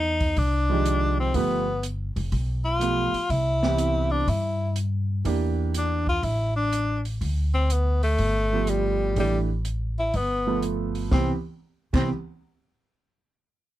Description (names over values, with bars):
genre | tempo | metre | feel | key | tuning
jazz, small-group swing and bop | 123 BPM | 4/4 | swing 67% on 8ths | C major | A4 = 440 Hz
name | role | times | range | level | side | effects
clear tenor saxophone | melody | 0.0-12.1 s | G3 to F4 | -25 LUFS | left 2 dB | none
upright bass | bass | 0.0-12.1 s | F1 to G2 | -26 LUFS | equal | none
open jazz drum kit | drums | 0.2-12.0 s | crash cymbal, hi-hat, kick drum, snare drum | -30 LUFS | equal | none
warm concert grand piano | accompaniment | 0.7-12.1 s | Eb3 to A4 | -28 LUFS | right 6 dB | none
room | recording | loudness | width
little or no reverb | close, detailed microphones | -22 LUFS | side -14 dB against mid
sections
0.0-7.2 A section; 7.2-11.1 B section; 11.1-13.1 C section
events
none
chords
0.0 Fm9; 1.3 G9; 3.3 Cmaj7; 5.3 Em7b5; 6.2 Asus4; 7.2 Bm/D; 8.2 G9; 9.2 A7sus4; 10.1 G9; 11.1 Cmaj7